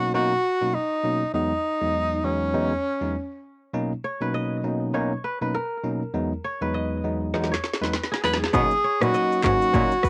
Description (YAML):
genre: afrobeats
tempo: 100 BPM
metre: 4/4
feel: swing 58% on 16ths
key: B major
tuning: A4 = 440 Hz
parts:
  - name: breathy tenor saxophone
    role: melody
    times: 0.0-3.4, 8.2-10.1 s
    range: C#4 to B4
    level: -25 LUFS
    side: equal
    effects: none
  - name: bell-like tine electric piano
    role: accompaniment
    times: 0.0-9.9 s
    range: E2 to D#4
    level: -29 LUFS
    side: equal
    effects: cassette tape
  - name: kora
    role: riff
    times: 4.0-10.1 s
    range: G#4 to D#5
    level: -34 LUFS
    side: equal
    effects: cassette tape, tape echo
  - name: afro-pop drum kit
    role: drums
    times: 7.3-10.1 s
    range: handclaps, hi-hat, kick drum, rim click, shaker, snare drum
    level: -29 LUFS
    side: equal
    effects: cassette tape
  - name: rich cello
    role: bass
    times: 8.5-9.8 s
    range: G#2 to B2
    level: -27 LUFS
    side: equal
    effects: none
room: light reverb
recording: home recording on cassette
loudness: -25 LUFS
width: mono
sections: 0.0-8.5 A section; 8.5-10.1 B section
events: drum fill 7.3-8.5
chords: 0.0 Bmaj7; 1.3 Emaj7; 3.7 Bmaj7; 6.1 Emaj7; 8.5 Bmaj7